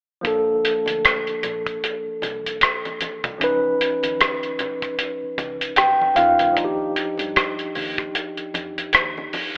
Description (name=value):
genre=lush 1970s-style soul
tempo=76 BPM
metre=4/4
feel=swing 58% on 16ths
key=Bb major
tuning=A4 = 440 Hz
part: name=tine electric piano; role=accompaniment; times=0.2-9.6 s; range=F3 to G5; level=-24 LUFS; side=equal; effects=none
part: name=cloth-damped thuddy drum kit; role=drums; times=0.2-9.5 s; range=hi-hat, kick drum, rim click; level=-24 LUFS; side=equal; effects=none
part: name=vintage muted fingered electric bass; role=bass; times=0.3-9.3 s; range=Bb1 to G2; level=-46 LUFS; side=equal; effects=none
part: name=congas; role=percussion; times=0.9-9.5 s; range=none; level=-39 LUFS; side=equal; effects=none
room=light reverb, studio ambience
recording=telephone sound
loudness=-21 LUFS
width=mono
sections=0.2-9.6 A section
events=tine electric piano fill 5.4-6.6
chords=0.2 Bbmaj7; 3.4 Db9; 6.6 Ebmaj9